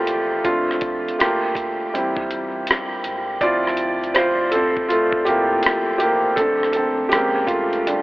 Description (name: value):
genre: lo-fi hip hop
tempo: 81 BPM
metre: 4/4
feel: swing 66% on 16ths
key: unclear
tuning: A4 = 440 Hz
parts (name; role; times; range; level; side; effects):
- felt-muted upright piano; accompaniment; 0.0-8.0 s; F3 to D5; -18 LUFS; equal; low-pass filter
- round analog bass; bass; 0.1-8.0 s; F1 to F2; -45 LUFS; equal; none
- dusty soul sampler-style drum kit; drums; 0.1-8.0 s; hi-hat, kick drum, rim click; -25 LUFS; equal; none
room: wet huge ambient reverb, RT60 7.8 s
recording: dreamy mix soaked in reverb, telephone sound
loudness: -17 LUFS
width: side -20 dB against mid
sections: 0.0-8.0 A section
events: felt piano solo 0.0-8.0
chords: 0.4 Bbmaj9; 1.2 Gm7; 1.9 Am7; 3.4 Dm7; 6.4 Bbmaj9; 7.1 Bbm7